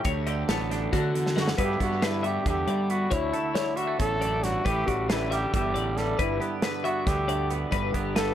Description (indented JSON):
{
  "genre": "math rock and midwest emo",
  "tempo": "274 BPM (eighths)",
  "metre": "7/8",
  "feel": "straight",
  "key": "unclear",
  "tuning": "A4 = 440 Hz",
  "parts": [
    { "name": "twangy electric guitar", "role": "accompaniment", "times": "0.0-8.3 s", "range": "D2 to E4", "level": "-32 LUFS", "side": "right 8 dB", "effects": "none" },
    { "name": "twelve-string electric guitar", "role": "arpeggios", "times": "0.0-8.3 s", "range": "F#4 to F#5", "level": "-31 LUFS", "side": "left 6 dB", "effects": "analog chorus, tape echo" },
    { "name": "modern studio drum kit", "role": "drums", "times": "0.0-8.3 s", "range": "hi-hat, kick drum, snare drum", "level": "-30 LUFS", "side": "equal", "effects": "tape echo" },
    { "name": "fuzz fingered electric bass", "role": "bass", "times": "0.1-8.3 s", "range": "G1 to G3", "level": "-30 LUFS", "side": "equal", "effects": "overdrive" },
    { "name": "breathy trumpet", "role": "melody", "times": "1.4-8.3 s", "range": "E4 to A4", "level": "-29 LUFS", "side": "equal", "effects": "tape echo" }
  ],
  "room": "light reverb",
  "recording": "echo-heavy mix",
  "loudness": "-24 LUFS",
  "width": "side -10 dB against mid",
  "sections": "0.0-1.6 A section; 1.6-8.3 B section",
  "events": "drum fill 1.3-1.6",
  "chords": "0.1 D69; 1.6 G6; 3.1 Dmaj9; 4.7 A9sus4; 6.2 G6"
}